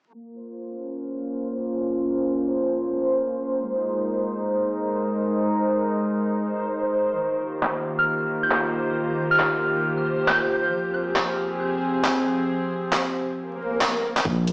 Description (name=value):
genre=future garage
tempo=136 BPM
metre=4/4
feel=swing 62% on 16ths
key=Bb dorian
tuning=A4 = 441 Hz
part: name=dark studio string section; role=sustained chords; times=0.1-14.5 s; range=Eb3 to C5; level=-24 LUFS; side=equal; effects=sidechain pumping
part: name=backwards swelling texture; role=texture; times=1.4-13.8 s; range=C5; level=-31 LUFS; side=equal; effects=built-in reverb
part: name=garage drum kit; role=drums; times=7.6-14.5 s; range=handclaps, hi-hat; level=-24 LUFS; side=equal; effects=overdrive, low-pass filter on snare, studio reverb, low-pass filter on hats
part: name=soft synth bell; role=melody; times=8.0-10.8 s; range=F6 to G6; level=-24 LUFS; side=equal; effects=chorus, phaser, vintage 12-bit sampler grit, tape echo
part: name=swell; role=sound effects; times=13.5-14.3 s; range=none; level=-27 LUFS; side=equal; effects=none
part: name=dark detuned saw bass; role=bass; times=14.3-14.5 s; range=Bb1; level=-21 LUFS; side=equal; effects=sidechain pumping
part: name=electronic kick drum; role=drums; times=14.3-14.4 s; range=none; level=-27 LUFS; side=equal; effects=overdrive, studio reverb
room=wet digital room reverb, RT60 0.9 s, digital ambience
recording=played on a big sound system in a bare room, stone room reverb, vinyl crackle, low-pass filter, small speaker sound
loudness=-21 LUFS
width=side -29 dB against mid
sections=0.1-14.3 A section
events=filter sweep 0.1-14.3; swell 13.5-14.3; drum fill 13.8-14.3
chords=0.1 Bbm; 3.7 Ab; 7.2 Ebadd9; 10.7 Fm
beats=| 0.14 0.58 1.02 1.46 | 1.90 2.34 2.78 3.22 | 3.66 4.11 4.55 4.99 | 5.43 5.87 6.31 6.75 | 7.19 7.63 8.08 8.52 | 8.96 9.40 9.84 10.28 | 10.72 11.16 11.61 12.05 | 12.49 12.93 13.37 13.81 | 14.25